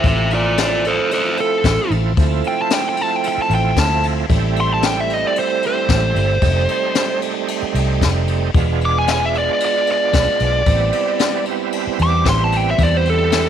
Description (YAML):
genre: straight-eighth soul blues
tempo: 113 BPM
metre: 4/4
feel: straight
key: A minor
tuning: A4 = 440 Hz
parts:
  - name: smooth overdriven lead guitar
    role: melody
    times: 0.0-13.5 s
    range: F4 to D6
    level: -18 LUFS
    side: equal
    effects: none
  - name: bright tonewheel organ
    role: accompaniment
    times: 0.0-13.5 s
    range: F3 to F4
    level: -22 LUFS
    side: right 13 dB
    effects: slow rotary speaker, overdrive, chorus vibrato
  - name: vintage muted fingered electric bass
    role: bass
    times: 0.0-13.5 s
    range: E1 to E2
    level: -19 LUFS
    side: equal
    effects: none
  - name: jazz brush drum kit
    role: drums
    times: 0.0-13.5 s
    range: kick drum, ride cymbal, snare drum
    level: -21 LUFS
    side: left 4 dB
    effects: none
room: light reverb, small room ambience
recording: 1960s-style stereo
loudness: -15 LUFS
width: side -9 dB against mid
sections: 0.0-13.5 A section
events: lead electric guitar solo 0.0-13.5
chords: 0.0 Dm9; 4.3 Am7; 6.4 F7; 8.5 E7b9; 10.7 Am9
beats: | 0.04 0.58 1.11 1.64 | 2.17 2.70 3.23 3.77 | 4.30 4.83 5.36 5.89 | 6.42 6.95 7.48 8.02 | 8.55 9.08 9.61 10.14 | 10.67 11.20 11.73 12.26 | 12.79 13.32